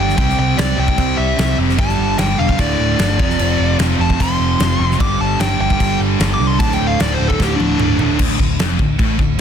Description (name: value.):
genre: hard rock.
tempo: 150 BPM.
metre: 4/4.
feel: straight.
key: D minor.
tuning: A4 = 437 Hz.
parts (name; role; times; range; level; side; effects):
dark smooth lead guitar; melody; 0.0-8.2 s; D4 to D6; -21 LUFS; left 2 dB; overdrive, analog delay.
high-gain distorted guitar; riff; 0.0-9.3 s; D2 to C4; -23 LUFS; left 11 dB; distortion.
high-gain distorted guitar; riff; 0.0-8.2 s; D2 to C4; -23 LUFS; right 1 dB; distortion.
sludgy distorted guitar; riff; 0.0-9.4 s; D2 to C4; -22 LUFS; right 12 dB; overdrive.
picked electric bass; bass; 0.0-9.4 s; D1 to C2; -20 LUFS; equal; none.
big rock drum kit; drums; 0.1-9.4 s; crash cymbal, kick drum, snare drum, toms; -19 LUFS; equal; none.
room: light reverb, studio reverb.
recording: dense, heavily limited modern master.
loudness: -13 LUFS.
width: side -8 dB against mid.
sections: 0.0-8.2 A section; 8.2-9.4 B section.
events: lead electric guitar solo 0.0-8.2; drum fill 7.4-8.2.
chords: 0.2 C; 1.8 G5; 2.6 D5; 3.2 F5; 5.0 G5; 6.6 D5; 8.2 Dm.